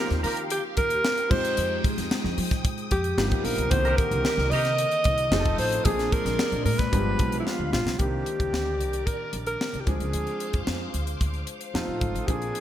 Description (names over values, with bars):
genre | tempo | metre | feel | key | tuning
polished 1980s jazz-funk pop | 112 BPM | 4/4 | straight | C minor | A4 = 440 Hz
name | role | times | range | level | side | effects
breathy alto saxophone | melody | 0.0-12.6 s | E4 to Eb5 | -27 LUFS | equal | none
mellow horn section | second line | 0.0-0.4, 3.9-4.7 s | Eb4 to Bb4 | -34 LUFS | right 2 dB | none
warm grand piano | accompaniment | 0.0-12.6 s | D3 to A4 | -32 LUFS | equal | wide subtle chorus
phased string machine | sustained chords | 0.0-12.6 s | Ab3 to Eb6 | -36 LUFS | equal | ensemble chorus, phaser
upright bass | bass | 0.1-12.5 s | F1 to F3 | -29 LUFS | equal | none
tight funk drum kit | drums | 0.1-12.6 s | crash cymbal, hi-hat, kick drum, snare drum | -28 LUFS | equal | gated reverb
room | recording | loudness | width
light reverb, small room ambience | bright 1980s-style digital production | -23 LUFS | side -11 dB against mid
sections
0.0-8.0 A section; 8.0-12.6 B section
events
drum fill 7.5-8.0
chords
0.0 Eb69; 1.3 Fm9; 3.2 G7alt; 3.7 Cm9; 5.3 F7; 5.9 Bb9; 6.9 G7b9; 8.0 Cm9; 9.9 Dm7b5; 11.7 F7